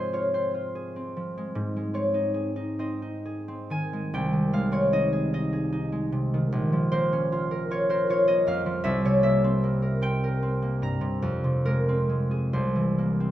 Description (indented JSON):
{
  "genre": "classical, solo harp piece",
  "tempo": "42-53 BPM (dotted quarters)",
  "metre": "6/8",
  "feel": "rubato",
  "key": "unclear",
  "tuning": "A4 = 440 Hz",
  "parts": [
    { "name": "concert harp", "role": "solo", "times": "0.0-13.3 s", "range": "Bb1 to Bb5", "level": "-23 LUFS", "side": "equal", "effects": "none" }
  ],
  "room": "moderate recital hall reverb, RT60 1.6 s",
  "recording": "none",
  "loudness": "-23 LUFS",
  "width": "side -13 dB against mid",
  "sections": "0.0-13.3 A section",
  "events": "none",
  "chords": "0.0 Fm/Ab; 1.5 Ab; 4.1 Ab/C; 6.5 Bbm; 8.8 C7; 11.2 Fm; 12.5 C7",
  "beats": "0.32 | 1.53 2.79 | 4.11 5.32 | 6.52 7.68 | 8.84 10.02 | 11.23 12.52"
}